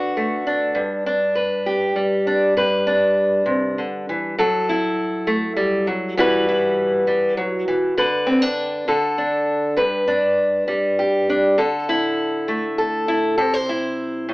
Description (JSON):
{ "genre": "folk, solo fingerstyle acoustic guitar", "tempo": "66 BPM (dotted quarters)", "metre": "6/8", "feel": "straight", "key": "G major", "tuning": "A4 = 440 Hz", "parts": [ { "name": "fingerpicked steel-string acoustic guitar", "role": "solo", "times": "0.0-14.3 s", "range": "G2 to C5", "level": "-18 LUFS", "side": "equal", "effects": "none" } ], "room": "wet small room reverb, RT60 0.6 s", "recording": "heard from further back in the room, AM radio sound", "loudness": "-17 LUFS", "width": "side -21 dB against mid", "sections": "0.0-2.6 A section; 2.6-14.3 B section", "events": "none", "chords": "0.0 D6; 0.8 G; 4.4 F#m7; 6.2 Emadd9; 8.0 Bm/D; 8.9 D5; 9.8 G; 11.6 Dsus2; 13.4 C", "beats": "| 0.76 1.67 | 2.58 3.48 | 4.38 5.28 | 6.17 7.06 | 7.96 8.87 | 9.78 10.69 | 11.60 12.49 | 13.39 14.29" }